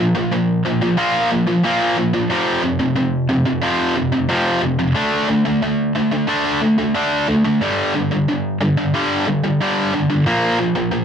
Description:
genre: metal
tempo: 91 BPM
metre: 4/4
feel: straight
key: unclear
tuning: A4 = 438 Hz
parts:
  - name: tight distorted guitar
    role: solo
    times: 0.0-11.0 s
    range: F2 to D4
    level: -15 LUFS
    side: equal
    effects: distortion
room: moderate studio reverb, RT60 0.7 s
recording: dark, warm production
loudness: -15 LUFS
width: side -8 dB against mid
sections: 0.0-11.0 A section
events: none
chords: 0.0 Bb5; 2.3 F5; 5.0 D5; 7.6 G5; 10.3 Bb5

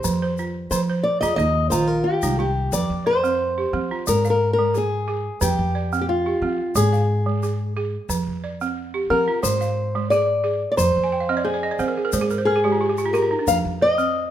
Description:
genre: west african traditional, West African string and xylophone music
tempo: 89 BPM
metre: 4/4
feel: straight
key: F dorian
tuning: A4 = 440 Hz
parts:
  - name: fingerpicked old ladder-braced acoustic guitar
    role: melody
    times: 0.0-14.3 s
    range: F4 to F5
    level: -21 LUFS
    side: left 1 dB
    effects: none
  - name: balafon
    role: arpeggios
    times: 0.0-14.3 s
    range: Eb3 to Ab5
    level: -24 LUFS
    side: right 4 dB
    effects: none
  - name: upright bass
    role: bass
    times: 0.0-14.3 s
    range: Bb1 to F3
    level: -26 LUFS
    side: left 1 dB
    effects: none
  - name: tube shaker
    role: percussion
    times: 0.0-14.1 s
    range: none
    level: -32 LUFS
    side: left 9 dB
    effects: none
room: light reverb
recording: minimal, uncompressed stereo recording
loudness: -19 LUFS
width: side -11 dB against mid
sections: 0.0-2.7 A section; 2.7-14.3 B section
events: steel-string acoustic guitar solo 0.0-2.7; balafon fill 11.0-13.5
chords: 0.0 Fm; 1.4 Eb; 2.7 F5; 4.1 Fmadd11/Ab; 5.4 F5; 6.8 Fm/Ab; 8.1 F5; 9.4 Ab; 10.8 Fm; 12.1 Abmaj13; 13.5 F5

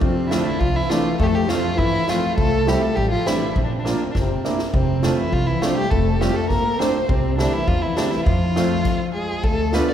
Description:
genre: klezmer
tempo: 102 BPM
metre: 2/4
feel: straight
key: F major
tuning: A4 = 440 Hz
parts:
  - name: warm violin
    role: melody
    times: 0.0-9.9 s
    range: C4 to D5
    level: -24 LUFS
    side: equal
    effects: none
  - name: breathy trombone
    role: second line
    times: 0.0-9.9 s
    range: Bb2 to C4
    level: -25 LUFS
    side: left 4 dB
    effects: none
  - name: upright bass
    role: bass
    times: 0.0-9.8 s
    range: F1 to G2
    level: -24 LUFS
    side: right 1 dB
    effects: none
  - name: swinging big-band drum kit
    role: drums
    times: 0.0-9.9 s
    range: crash cymbal, kick drum, snare drum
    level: -24 LUFS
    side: equal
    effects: none
  - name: clear upright piano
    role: accompaniment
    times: 0.3-9.9 s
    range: G3 to F4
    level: -25 LUFS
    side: right 2 dB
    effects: none
room: wet church reverb, RT60 3.0 s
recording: recorded in a church or concert hall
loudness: -18 LUFS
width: side -10 dB against mid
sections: 0.0-9.4 A section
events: drum fill 4.2-4.7; stop 8.9-9.4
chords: 0.0 F; 2.4 C; 3.6 Bb; 4.7 F; 7.1 C; 8.3 F

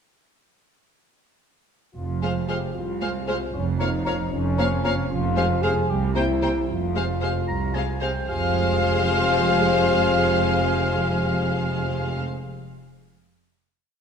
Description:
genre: cinematic, playful, whimsical film cue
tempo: 76 BPM (dotted quarters)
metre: 6/8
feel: straight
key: F minor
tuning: A4 = 443 Hz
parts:
  - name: mellow French horn section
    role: sustained chords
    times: 1.9-12.2 s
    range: C4 to Ab4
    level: -28 LUFS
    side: left 5 dB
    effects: none
  - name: rich studio double bass section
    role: bass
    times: 2.0-12.2 s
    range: F1 to C2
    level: -28 LUFS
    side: right 4 dB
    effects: none
  - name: warm studio cello section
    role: bass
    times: 2.0-12.2 s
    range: C2 to F2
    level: -28 LUFS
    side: right 3 dB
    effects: none
  - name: rich studio violin section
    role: melody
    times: 2.2-12.2 s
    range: F5 to G5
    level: -29 LUFS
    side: left 3 dB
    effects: none
  - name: clear studio violin section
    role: second line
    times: 2.2-12.2 s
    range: C5 to Db5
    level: -33 LUFS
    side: left 3 dB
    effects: none
  - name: mellow clarinet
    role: second line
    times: 2.2-12.2 s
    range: C5 to Db5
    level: -32 LUFS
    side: left 2 dB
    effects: none
  - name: mellow hollow concert flute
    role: second line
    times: 2.2-12.2 s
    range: Ab5 to Bb5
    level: -34 LUFS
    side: left 2 dB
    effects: none
  - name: warm oboe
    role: second line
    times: 2.2-12.2 s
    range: F5 to Bb5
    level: -32 LUFS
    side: right 2 dB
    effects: none
  - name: mellow bassoon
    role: accompaniment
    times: 2.2-12.2 s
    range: C3 to F3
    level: -31 LUFS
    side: right 1 dB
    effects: none
  - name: warm studio viola section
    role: accompaniment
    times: 2.2-12.2 s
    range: Ab3 to Bb3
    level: -32 LUFS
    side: left 1 dB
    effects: none
room: wet scoring stage reverb, RT60 1.8 s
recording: none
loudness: -20 LUFS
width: side -6 dB against mid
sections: 2.0-8.3 A section; 8.3-11.4 final chord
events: none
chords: 2.0 Fm; 3.5 Bbm/F; 5.1 Fm; 5.9 C7; 6.7 Fm

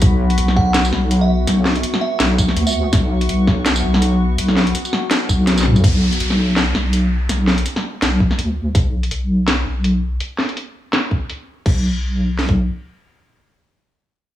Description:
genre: half-time drum and bass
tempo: 165 BPM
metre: 4/4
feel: swing 56% on 16ths, half-time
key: unclear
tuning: A4 = 440 Hz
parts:
  - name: deep dark ambient pad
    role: sustained chords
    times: 0.0-7.3 s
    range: B3 to C#6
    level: -25 LUFS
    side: left 1 dB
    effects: chorus, built-in reverb, sidechain pumping
  - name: deep soft wobble bass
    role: bass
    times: 0.0-12.7 s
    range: B1 to D2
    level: -17 LUFS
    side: equal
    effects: chorus
  - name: drum and bass drum kit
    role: drums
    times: 0.0-5.9, 8.2-8.8, 11.1-12.6 s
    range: kick drum, snare drum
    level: -16 LUFS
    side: equal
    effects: none
  - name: drum and bass drum kit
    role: drums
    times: 0.0-11.7 s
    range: crash cymbal, hi-hat, snare drum, tambourine, toms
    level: -19 LUFS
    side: equal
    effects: low-pass filter on hats, low-pass filter on snare, low-pass filter on perc, low-pass filter on toms, low-pass filter on cymbals, low-pass filter on room
  - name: glassy synth bell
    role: melody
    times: 0.6-2.9 s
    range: E5 to F#5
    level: -26 LUFS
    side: right 4 dB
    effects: chorus, tremolo, vintage 12-bit sampler grit, dub echo
  - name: downlifter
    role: sound effects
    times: 5.8-8.7 s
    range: none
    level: -27 LUFS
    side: equal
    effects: none
room: light reverb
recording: small room ambience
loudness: -15 LUFS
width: side -12 dB against mid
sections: 0.0-5.8 A section; 5.8-11.7 B section; 11.7-14.4 C section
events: drop 0.0-5.8; drum fill 5.5-5.8; filter sweep on wobble bass 5.8-10.2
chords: 0.0 B5; 11.7 N.C.

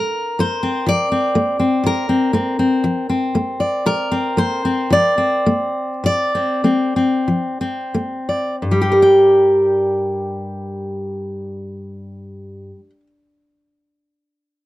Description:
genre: folk, solo fingerstyle acoustic guitar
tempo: 43-63 BPM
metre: 4/4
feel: straight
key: G minor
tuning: A4 = 440 Hz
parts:
  - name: fingerpicked steel-string acoustic guitar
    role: solo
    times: 0.0-13.1 s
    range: G2 to G5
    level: -16 LUFS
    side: left 1 dB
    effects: none
room: little or no reverb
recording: dry, close 1970s-style studio recording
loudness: -15 LUFS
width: side -16 dB against mid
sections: 0.0-8.6 A section; 8.6-14.2 B section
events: slowing down 0.0-8.6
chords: 0.0 Bbadd9; 8.6 Gm

